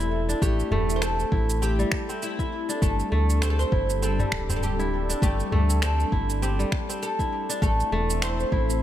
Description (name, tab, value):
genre	organic downtempo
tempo	100 BPM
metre	4/4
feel	swing 57% on 16ths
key	unclear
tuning	A4 = 439 Hz
part	oud	melody	0.0-8.8 s	E4 to C5	-30 LUFS	left 1 dB	digital delay
part	warm analog pad	sustained chords	0.0-8.8 s	G3 to A4	-32 LUFS	right 1 dB	chorus, sidechain pumping
part	kora	arpeggios	0.0-8.8 s	G3 to E4	-31 LUFS	equal	digital delay
part	round analog bass	bass	0.0-8.8 s	D1 to D2	-25 LUFS	equal	tube saturation, sidechain pumping
part	electronic shaker and finger snaps	drums	0.0-8.8 s	none	-32 LUFS	right 3 dB	overdrive
part	electronic kick drum	drums	0.4-8.7 s	none	-26 LUFS	equal	none
part	udu	percussion	0.7-5.7 s	none	-30 LUFS	left 1 dB	none
part	wind-like tuned noise texture	texture	8.0-8.8 s	C4 to C5	-35 LUFS	left 4 dB	built-in reverb
room	light reverb, digital ambience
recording	none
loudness	-22 LUFS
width	side -12 dB against mid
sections	0.0-8.8 A section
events	none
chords	0.0 Am7; 2.8 Gsus2; 7.6 Am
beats	| 0.42 1.02 1.62 2.22 | 2.82 3.42 4.02 4.62 | 5.22 5.82 6.42 7.02 | 7.62 8.22 8.82